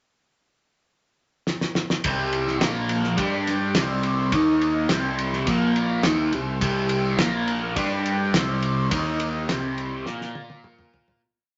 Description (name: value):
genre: psychedelic rock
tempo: 105 BPM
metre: 4/4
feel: straight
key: unclear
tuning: A4 = 443 Hz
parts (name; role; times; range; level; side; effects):
- cloth-damped thuddy drum kit; drums; 1.5-11.2 s; kick drum, ride cymbal, snare drum, toms; -29 LUFS; equal; none
- combo organ; sustained chords; 2.0-11.2 s; G3 to F5; -35 LUFS; equal; none
- fuzz guitar; riff; 2.0-11.2 s; Bb2 to Bb4; -26 LUFS; equal; distortion, phaser
- overdriven picked electric bass; bass; 2.0-11.2 s; Bb1 to Bb2; -35 LUFS; equal; none
room: wet studio reverb, RT60 0.7 s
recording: nothing above 7.8 kHz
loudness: -23 LUFS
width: mono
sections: 0.0-2.1 pickup bar; 2.1-11.2 groove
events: drum fill 1.5-2.1, 10.1-11.2; fade-out 8.9-11.2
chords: 0.0 N.C.; 2.1 C; 2.6 Bb5; 3.2 G5; 3.8 C; 4.3 Eb5; 4.9 C; 5.5 Bb5; 6.0 C; 7.2 Bb5; 7.8 G5; 8.3 C; 8.9 Eb5; 9.5 C; 10.1 Bb5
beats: 0.34 0.91 1.49 | 2.06 2.62 3.19 3.77 | 4.33 4.91 5.48 6.05 | 6.62 7.19 7.76 8.34 | 8.91 9.49 10.06 10.64